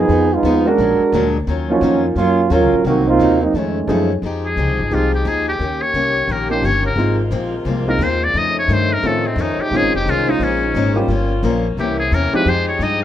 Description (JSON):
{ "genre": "jazz, big band swing", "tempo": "175 BPM", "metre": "4/4", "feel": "swing 62% on 8ths", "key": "F minor from 4.2 s", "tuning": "A4 = 439 Hz", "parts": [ { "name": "clear trombone section", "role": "second line", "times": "0.0-4.1 s", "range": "Eb3 to Bb4", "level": "-15 LUFS", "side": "right 4 dB", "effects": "plate reverb" }, { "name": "upright bass", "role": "bass", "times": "0.0-13.0 s", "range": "F1 to A2", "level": "-21 LUFS", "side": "left 1 dB", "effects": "none" }, { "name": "picked steel-string acoustic guitar", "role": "accompaniment", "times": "0.1-13.0 s", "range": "F2 to Ab4", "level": "-23 LUFS", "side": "left 4 dB", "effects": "plate reverb" }, { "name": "warm concert grand piano", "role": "accompaniment", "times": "0.7-12.5 s", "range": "F3 to C5", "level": "-21 LUFS", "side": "right 1 dB", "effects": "plate reverb" }, { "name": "clear saxophone section", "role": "sustained chords", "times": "4.2-13.0 s", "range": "C3 to C5", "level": "-25 LUFS", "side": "left 1 dB", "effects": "plate reverb" }, { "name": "trumpet with metal mute", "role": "melody", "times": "4.5-13.0 s", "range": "C4 to Eb5", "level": "-19 LUFS", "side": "left 1 dB", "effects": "plate reverb" } ], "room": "moderate studio reverb, RT60 0.5 s", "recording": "rough home demo mix", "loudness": "-14 LUFS", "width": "side -11 dB against mid", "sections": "0.0-4.2 A section; 4.2-13.0 B section", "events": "trombone section solo 0.0-4.2; muted trumpet solo 4.2-13.0", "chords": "0.1 Fm7b5; 0.8 Bbaug7; 1.5 Ebm9; 2.9 Cm7b5; 3.5 F7alt; 4.2 Fm9; 5.6 Eb7; 7.0 Ab69; 8.3 F7b13; 9.7 Bbm11; 11.1 Gm7b5; 11.8 C7b9; 12.5 Fm9" }